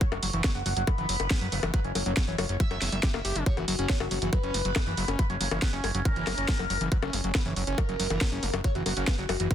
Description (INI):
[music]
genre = psychedelic trance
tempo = 139 BPM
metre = 4/4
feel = straight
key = unclear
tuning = A4 = 440 Hz
[part]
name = overdriven synth lead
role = melody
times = 0.0-9.5 s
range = C#4 to E5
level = -33 LUFS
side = left 1 dB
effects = phaser, sidechain pumping, dub echo
[part]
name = screaming distorted acid line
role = riff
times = 0.0-9.5 s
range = E3 to G4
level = -34 LUFS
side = moving between left 3 dB and right 4 dB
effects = distortion, chorus, auto-pan, sidechain pumping, digital delay
[part]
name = drum and bass drum kit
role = drums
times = 0.0-9.5 s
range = bongos, hi-hat, snare drum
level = -31 LUFS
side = left 2 dB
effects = none
[part]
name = electronic kick drum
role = drums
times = 0.0-9.5 s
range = none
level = -26 LUFS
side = equal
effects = none
[part]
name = fat analog bass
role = bass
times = 0.1-9.5 s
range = F#1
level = -31 LUFS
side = equal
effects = none
[part]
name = formant-sweep wobble bass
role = second line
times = 1.5-2.2, 5.0-9.1 s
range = A#3 to C#4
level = -45 LUFS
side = right 4 dB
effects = none
[sound]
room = little or no reverb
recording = dense, heavily limited modern master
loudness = -25 LUFS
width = side -10 dB against mid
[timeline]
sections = 0.0-9.5 A section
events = none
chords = 0.0 F#5